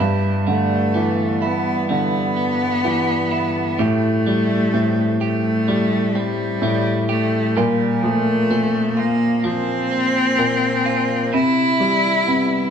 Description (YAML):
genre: pop ballad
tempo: 64 BPM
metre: 4/4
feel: straight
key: unclear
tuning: A4 = 440 Hz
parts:
  - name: rich cello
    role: melody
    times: 0.0-12.7 s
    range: G3 to E4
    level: -20 LUFS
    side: left 1 dB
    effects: none
  - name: bright upright piano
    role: accompaniment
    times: 0.0-12.7 s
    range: G2 to G3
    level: -20 LUFS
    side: equal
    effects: none
  - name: clean electric guitar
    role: arpeggios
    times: 0.0-12.7 s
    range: G2 to G4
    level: -26 LUFS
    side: right 4 dB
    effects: none
room: wet stone room reverb, RT60 1.2 s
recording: band playing live in one room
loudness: -16 LUFS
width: side -7 dB against mid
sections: 0.0-12.7 A section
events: none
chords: 0.0 G6; 3.8 Am7; 7.6 Bbsus2; 11.3 Cmaj7